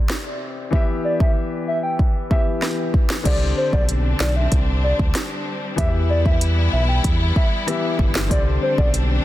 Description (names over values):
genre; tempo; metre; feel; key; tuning
dancehall; 95 BPM; 4/4; straight; unclear; A4 = 440 Hz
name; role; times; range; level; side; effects
clear concert grand piano; accompaniment; 0.0-9.2 s; C3 to E5; -26 LUFS; left 4 dB; sidechain pumping
afro-pop drum kit; drums; 0.1-9.1 s; crash cymbal, hi-hat, kick drum, rim click, snare drum; -20 LUFS; equal; none
hollow clarinet-like synth lead; melody; 0.7-8.9 s; C5 to G5; -26 LUFS; equal; chorus, tape echo
clear studio string section; sustained chords; 3.3-9.2 s; G3 to E4; -28 LUFS; left 2 dB; sidechain pumping
round analog bass; bass; 3.3-9.2 s; G1 to E2; -20 LUFS; equal; none
room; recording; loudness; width
little or no reverb; dense, heavily limited modern master; -17 LUFS; side -14 dB against mid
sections
0.0-3.3 A section; 3.3-9.2 B section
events
none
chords
0.0 Csus2; 0.7 Em; 3.3 Csus2; 5.8 Em; 8.3 Csus2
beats
0.10 | 0.73 1.36 1.99 2.62 | 3.25 3.89 4.52 5.15 | 5.78 6.41 7.04 7.68 | 8.31 8.94